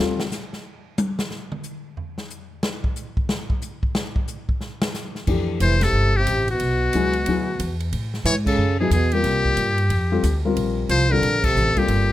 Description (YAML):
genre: jazz, small-group swing and bop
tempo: 182 BPM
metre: 4/4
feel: swing 63% on 8ths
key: F major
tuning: A4 = 441 Hz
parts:
  - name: dark baby grand piano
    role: accompaniment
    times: 0.0-0.2, 5.3-12.1 s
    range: E3 to Bb4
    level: -24 LUFS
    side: left 4 dB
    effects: none
  - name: upright bass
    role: bass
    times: 0.0-0.2, 5.3-12.1 s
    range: F1 to A2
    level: -22 LUFS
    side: equal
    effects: none
  - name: swinging big-band drum kit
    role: drums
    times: 0.2-12.0 s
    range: crash cymbal, hi-hat, kick drum, ride cymbal, snare drum, toms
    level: -27 LUFS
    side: equal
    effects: none
  - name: trumpet with metal mute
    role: melody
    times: 5.6-12.1 s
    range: Gb4 to C#5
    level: -22 LUFS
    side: left 3 dB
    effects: none
  - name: breathy trombone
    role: second line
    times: 5.6-12.1 s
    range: Bb2 to F3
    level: -26 LUFS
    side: right 4 dB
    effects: none
room: little or no reverb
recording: close, detailed microphones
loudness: -19 LUFS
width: side -14 dB against mid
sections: 0.0-5.3 A section; 5.3-12.1 B section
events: drum solo 0.0-5.3; band accent 5.8, 8.4, 11.4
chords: 0.0 Dmadd11; 1.3 N.C.; 5.3 Fmaj9; 6.6 E13; 7.9 Amaj9; 9.2 C5; 9.9 F69; 10.6 Bbmaj9